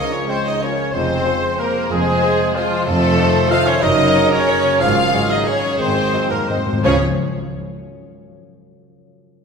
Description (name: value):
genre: classical, orchestral ballroom waltz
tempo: 166-202 BPM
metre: 3/4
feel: rubato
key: Db major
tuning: A4 = 441 Hz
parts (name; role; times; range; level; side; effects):
- warm studio violin section; melody; 0.0-7.0 s; F4 to F5; -26 LUFS; left 2 dB; none
- flute section; second line; 0.0-7.0 s; F4 to F5; -24 LUFS; right 1 dB; none
- rich studio violin section; second line; 0.0-7.0 s; F4 to F5; -26 LUFS; left 3 dB; none
- warm oboe; second line; 0.0-7.0 s; F4 to F5; -26 LUFS; right 1 dB; none
- mellow bassoon; accompaniment; 0.0-7.0 s; Db3 to Bb3; -24 LUFS; right 2 dB; none
- mellow trombone section; sustained chords; 0.0-7.0 s; Db3 to Ab3; -30 LUFS; right 2 dB; none
- warm French horn section; sustained chords; 0.0-7.0 s; F3 to F4; -22 LUFS; left 2 dB; none
- concert harp; arpeggios; 0.0-7.0 s; F2 to Db5; -26 LUFS; left 5 dB; none
- clear trumpet; stabs; 0.0-7.0 s; Ab4 to Db5; -26 LUFS; right 1 dB; none
- dark studio double bass section; bass; 0.0-7.0 s; F1 to Db2; -26 LUFS; right 3 dB; none
- rich studio cello section; bass; 0.0-7.0 s; Db2 to Db3; -25 LUFS; right 2 dB; none
- dark studio viola section; accompaniment; 0.3-7.0 s; F4 to Eb5; -27 LUFS; left 1 dB; none
- timpani; percussion; 5.8-7.0 s; Ab2 to Db3; -26 LUFS; left 2 dB; none
room: wet scoring stage reverb, RT60 1.9 s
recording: minimal, uncompressed stereo recording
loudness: -14 LUFS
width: side -5 dB against mid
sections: 0.0-6.8 A section; 6.8-7.9 B section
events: timpani fill 5.8-6.8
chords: 0.0 Db; 0.9 Fm; 2.9 F7; 3.8 Gb; 4.8 Ab7sus4; 5.8 Ab7; 6.8 Db